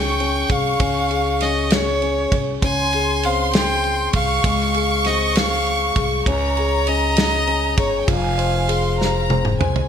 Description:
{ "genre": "six-eight pop ballad", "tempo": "66 BPM (dotted quarters)", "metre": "6/8", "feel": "straight", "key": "unclear", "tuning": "A4 = 442 Hz", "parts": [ { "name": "rich violin", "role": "melody", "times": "0.0-9.3 s", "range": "Db5 to Ab5", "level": "-23 LUFS", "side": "right 2 dB", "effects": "none" }, { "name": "clear studio violin section", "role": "second line", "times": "0.0-9.9 s", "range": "G5 to Db6", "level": "-24 LUFS", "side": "right 1 dB", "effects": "none" }, { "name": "felt-muted upright piano", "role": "accompaniment", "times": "0.0-9.9 s", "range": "F3 to C5", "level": "-24 LUFS", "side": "left 8 dB", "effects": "none" }, { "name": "upright bass", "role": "bass", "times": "0.0-9.9 s", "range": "F1 to Db2", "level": "-24 LUFS", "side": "right 1 dB", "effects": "none" }, { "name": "loose indie drum kit", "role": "drums", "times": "0.2-9.9 s", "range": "kick drum, ride cymbal, snare drum, toms", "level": "-23 LUFS", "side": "right 1 dB", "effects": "gated reverb" } ], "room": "light reverb", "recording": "bright 1980s-style digital production", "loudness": "-16 LUFS", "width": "side -8 dB against mid", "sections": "0.0-9.9 A section", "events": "drum fill 9.0-9.9", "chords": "0.0 Dbmaj7/C; 6.3 Bbm7/Db; 8.1 Fm", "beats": "| 0.80 1.71 | 2.62 3.53 | 4.44 5.35 | 6.26 7.17 | 8.08 8.99" }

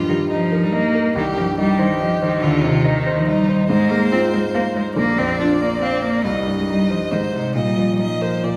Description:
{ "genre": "quick classical-period movement for piano trio", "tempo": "141 BPM", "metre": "3/4", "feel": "straight", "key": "unclear", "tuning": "A4 = 439 Hz", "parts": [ { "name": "clear violin", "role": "melody", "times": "0.0-8.6 s", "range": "Eb4 to Eb5", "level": "-27 LUFS", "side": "equal", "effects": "none" }, { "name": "warm grand piano", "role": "accompaniment", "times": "0.0-8.6 s", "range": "Bb1 to F5", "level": "-23 LUFS", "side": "equal", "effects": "none" }, { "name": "rich cello", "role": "second line", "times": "0.1-8.6 s", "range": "C3 to D4", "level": "-22 LUFS", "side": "equal", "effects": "none" } ], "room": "wet recital hall reverb, RT60 1.5 s", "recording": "none", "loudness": "-19 LUFS", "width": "mono", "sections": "0.0-8.6 A section", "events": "none", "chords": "0.0 Eb/G; 1.2 Cm; 2.4 Cm/Eb; 3.7 Fm/Ab; 5.0 Bb; 6.2 Cm; 7.1 Ab; 7.6 Bbsus4", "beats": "0.30 0.73 | 1.15 1.58 2.00 | 2.43 2.85 3.27 | 3.69 4.12 4.55 | 4.97 5.40 5.82 | 6.25 6.68 7.11 | 7.55 8.00 8.44" }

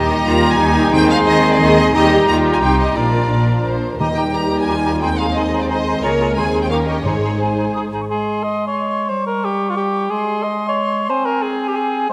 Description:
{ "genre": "classical", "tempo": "177 BPM", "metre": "3/4", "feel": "straight", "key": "Eb major, Ab major from 6.0 s", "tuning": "A4 = 444 Hz", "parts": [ { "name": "rich symphonic violin section", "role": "melody", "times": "0.0-7.7 s", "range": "C5 to Bb5", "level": "-24 LUFS", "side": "equal", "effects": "none" }, { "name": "bright concert flute", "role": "second line", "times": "0.0-12.1 s", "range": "Ab5 to Eb6", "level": "-26 LUFS", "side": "equal", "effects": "none" }, { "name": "clear clarinet", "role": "second line", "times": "0.0-12.1 s", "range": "G3 to F4", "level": "-27 LUFS", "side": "equal", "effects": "none" }, { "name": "mellow cor anglais", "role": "second line", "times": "0.0-12.1 s", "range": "F4 to Eb5", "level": "-25 LUFS", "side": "equal", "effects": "none" }, { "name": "warm symphonic viola section", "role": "accompaniment", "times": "0.0-7.9 s", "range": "D4 to C5", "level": "-24 LUFS", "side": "equal", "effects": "none" }, { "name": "mellow French horn section", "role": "sustained chords", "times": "0.0-7.9 s", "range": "F3 to F4", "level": "-24 LUFS", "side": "equal", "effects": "none" }, { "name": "rich symphonic cello section", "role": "bass", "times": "0.0-7.9 s", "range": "Db2 to Eb3", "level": "-25 LUFS", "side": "equal", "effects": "none" }, { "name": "warm symphonic double bass section", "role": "bass", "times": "0.0-7.9 s", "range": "Ab1 to Eb2", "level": "-24 LUFS", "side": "equal", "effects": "none" }, { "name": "warm studio violin section", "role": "second line", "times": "0.1-7.9 s", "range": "C4 to Db5", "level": "-29 LUFS", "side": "equal", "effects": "none" }, { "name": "timpani", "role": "percussion", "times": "0.9-1.4, 4.0-4.5, 7.1-7.5 s", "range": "Ab2 to Eb3", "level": "-30 LUFS", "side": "equal", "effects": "none" } ], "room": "wet concert hall reverb, RT60 2.1 s", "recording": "dark, warm production", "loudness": "-17 LUFS", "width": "mono", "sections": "0.0-8.1 A section; 8.1-12.1 B section", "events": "none", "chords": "0.0 Eb; 0.9 Ab/Eb; 1.9 Eb; 2.6 Cm; 3.0 Bb; 4.0 Eb; 5.0 Ab/Eb; 6.0 Bbm7/Db; 6.4 Ab/Eb; 6.7 Eb7; 7.1 Ab; 9.1 G(b5, no3); 10.1 Ab; 11.1 Ab/C", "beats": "0.25 0.59 | 0.93 1.27 1.60 | 1.94 2.27 2.61 | 2.96 3.31 3.65 | 4.00 4.34 4.68 | 5.02 5.36 5.69 | 6.03 6.36 6.71 | 7.05 7.40 7.74 | 8.09 8.43 8.76 | 9.10 9.43 9.76 | 10.10 10.43 10.76 | 11.10 11.43 11.76 | 12.09" }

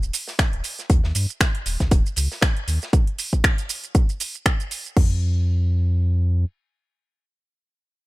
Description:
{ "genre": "deep house", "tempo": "118 BPM", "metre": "4/4", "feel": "swing 56% on 16ths", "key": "unclear", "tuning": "A4 = 440 Hz", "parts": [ { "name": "sub bass with octave", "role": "bass", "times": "0.0-6.5 s", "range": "Eb1 to G2", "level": "-20 LUFS", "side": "equal", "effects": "sidechain pumping" }, { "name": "house drum kit", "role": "drums", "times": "0.0-5.1 s", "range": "crash cymbal, finger snaps, hi-hat, shaker", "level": "-25 LUFS", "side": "right 1 dB", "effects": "none" }, { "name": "modern studio drum kit", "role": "drums", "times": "0.1-2.9 s", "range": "hi-hat, snare drum", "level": "-36 LUFS", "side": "left 2 dB", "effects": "high-pass filter on hats, high-pass filter on snare, high-pass filter on room" }, { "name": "electronic kick drum", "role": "drums", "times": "0.4-5.1 s", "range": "none", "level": "-18 LUFS", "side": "equal", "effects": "none" } ], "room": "little or no reverb", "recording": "none", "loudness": "-19 LUFS", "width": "side -20 dB against mid", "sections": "0.0-5.0 A section; 5.0-8.1 B section", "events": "drop 0.0-5.0", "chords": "none", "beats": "0.39 | 0.90 1.41 1.91 2.42 | 2.93 3.44 3.95 4.46 | 4.96 5.47 5.98" }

